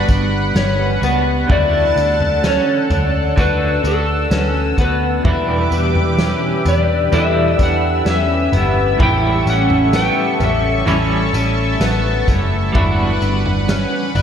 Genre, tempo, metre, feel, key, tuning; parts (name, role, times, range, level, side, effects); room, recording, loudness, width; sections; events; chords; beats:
dream pop; 64 BPM; 4/4; straight; E dorian; A4 = 440 Hz
clean electric guitar; accompaniment; 0.0-14.2 s; E2 to F#4; -23 LUFS; right 2 dB; tremolo, lush chorus
lush unison pad; sustained chords; 0.0-14.2 s; G3 to E6; -22 LUFS; equal; chorus
fingerpicked twelve-string acoustic guitar; arpeggios; 0.0-14.2 s; A3 to E4; -21 LUFS; left 2 dB; analog chorus, ping-pong delay
vintage muted picked electric bass; bass; 0.0-14.2 s; F#1 to E2; -19 LUFS; equal
synth chime; texture; 0.0-9.4 s; D4 to B4; -32 LUFS; equal
raw garage drum kit; drums; 0.1-14.2 s; kick drum, snare drum, tambourine, toms; -21 LUFS; equal
electric slide guitar; melody; 1.5-11.8 s; A4 to G5; -20 LUFS; left 2 dB; ping-pong delay
moderate plate reverb, RT60 2.8 s; dreamy mix soaked in reverb; -13 LUFS; side -8 dB against mid
0.0-14.2 A section
0.0 Gmaj7; 1.5 D; 5.2 Em7; 9.0 A7; 12.7 Gmaj7
0.56 | 1.50 2.44 3.37 4.31 | 5.25 6.19 7.12 8.06 | 9.00 9.94 10.87 11.81 | 12.75 13.69